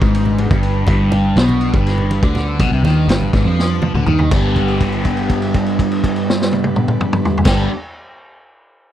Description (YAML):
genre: psychedelic rock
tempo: 244 BPM (eighths)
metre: 7/8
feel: straight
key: G phrygian dominant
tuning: A4 = 439 Hz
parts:
  - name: overdriven combo organ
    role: sustained chords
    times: 0.0-7.7 s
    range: G3 to B4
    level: -27 LUFS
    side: right 3 dB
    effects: wide subtle chorus
  - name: crunchy overdriven guitar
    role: riff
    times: 0.0-7.7 s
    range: G2 to G4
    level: -17 LUFS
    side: equal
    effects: phaser
  - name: fingered electric bass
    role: bass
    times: 0.0-7.7 s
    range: G1 to F2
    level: -18 LUFS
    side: equal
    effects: none
  - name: vintage drum kit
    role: drums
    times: 0.0-7.6 s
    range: crash cymbal, kick drum, ride cymbal, snare drum, toms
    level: -18 LUFS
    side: equal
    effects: none
  - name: congas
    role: percussion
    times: 0.3-4.5 s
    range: none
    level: -25 LUFS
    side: right 2 dB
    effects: none
room: little or no reverb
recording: dry, close 1970s-style studio recording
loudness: -13 LUFS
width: side -11 dB against mid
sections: 0.0-4.3 A section; 4.3-7.8 B section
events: drum fill 3.6-4.3; held note 4.3-7.5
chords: 0.0 G